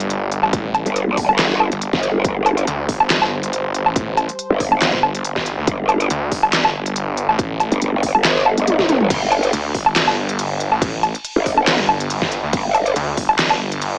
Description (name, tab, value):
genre	heavy wobble dubstep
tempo	140 BPM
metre	4/4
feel	swing 54% on 16ths, half-time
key	G minor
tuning	A4 = 440 Hz
part	lush unison pad	sustained chords	0.0-9.1 s	G3 to D5	-31 LUFS	equal	chorus, sidechain pumping
part	snarling distorted saw bass	bass	0.0-14.0 s	G1 to D2	-21 LUFS	equal	distortion, overdrive
part	dubstep drum kit	drums	0.0-13.9 s	crash cymbal, handclaps, hi-hat, snare drum, toms, woodblock	-17 LUFS	equal	none
part	electronic kick drum	drums	0.5-13.3 s	none	-23 LUFS	equal	none
part	growl bass	bass	0.9-12.9 s	G1 to Bb1	-17 LUFS	equal	chorus, overdrive
room	light reverb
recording	small speaker sound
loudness	-15 LUFS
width	side -27 dB against mid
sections	0.0-9.1 A section; 9.1-14.0 A section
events	drop 0.0-9.1, 9.1-14.0; drum fill 8.7-9.1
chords	0.0 Gm; 9.1 N.C.